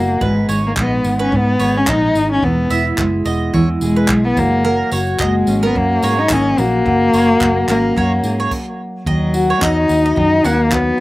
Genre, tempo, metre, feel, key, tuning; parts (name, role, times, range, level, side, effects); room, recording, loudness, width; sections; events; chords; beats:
acoustic pop; 108 BPM; 4/4; swing 55% on 16ths; A4 = 440 Hz
dark cello; melody; 0.0-11.0 s; F#3 to D#4; -16 LUFS; left 1 dB
fingerpicked steel-string acoustic guitar; accompaniment; 0.0-11.0 s; G#2 to B4; -19 LUFS; equal
vintage muted fingered electric bass; bass; 0.0-10.9 s; E1 to G#2; -20 LUFS; equal
mandolin; arpeggios; 0.2-10.6 s; A#4 to F#5; -23 LUFS; right 4 dB; slapback echo
jazz brush drum kit; drums; 0.2-10.9 s; crash cymbal, handclaps, kick drum, tambourine; -24 LUFS; equal
little or no reverb; recorded outdoors, with no room sound; -13 LUFS; side -18 dB against mid
0.0-9.1 A section; 9.1-11.0 B section
stop 8.5-9.1
0.2 G#m; 2.4 E; 4.4 F#add9; 9.1 D#m
| 0.21 0.77 1.32 1.88 | 2.43 2.98 3.54 4.09 | 4.64 5.20 5.75 6.30 | 6.86 7.41 7.96 8.52 | 9.07 9.62 10.17 10.72